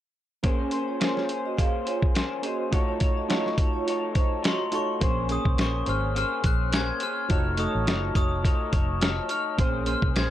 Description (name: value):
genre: indie pop, bedroom pop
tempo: 105 BPM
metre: 4/4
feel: swing 55% on 16ths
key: Bb minor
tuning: A4 = 440 Hz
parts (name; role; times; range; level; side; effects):
- electric guitar through a small old amp; accompaniment; 0.4-10.3 s; F3 to Db5; -31 LUFS; left 5 dB; analog chorus, vibrato effect, plate reverb
- soft electric-piano-like synth keys; accompaniment; 0.4-10.3 s; A3 to Db5; -32 LUFS; right 3 dB; chorus, cassette tape
- dusty soul sampler-style drum kit; drums; 0.4-10.3 s; hi-hat, kick drum, snare drum; -25 LUFS; equal; none
- vibraphone with medium mallets; second line; 0.6-4.9 s; Db4 to F5; -33 LUFS; right 5 dB; analog chorus, analog delay
- glockenspiel with brass mallets; melody; 4.5-10.3 s; C6 to Ab6; -30 LUFS; left 2 dB; analog chorus, analog delay
- vintage muted fingered electric bass; bass; 5.0-10.3 s; F1 to C2; -29 LUFS; equal; none
room: light reverb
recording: none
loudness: -23 LUFS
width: side -12 dB against mid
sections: 0.4-5.0 A section; 5.0-10.3 B section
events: none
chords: 0.4 Bbm9; 2.7 F7b9b13; 5.0 Bbm9; 7.3 F7b9b13; 9.6 Bbm9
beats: | 0.44 1.01 1.58 2.15 | 2.73 3.30 3.87 4.44 | 5.01 5.58 6.16 6.73 | 7.30 7.87 8.44 9.01 | 9.58 10.15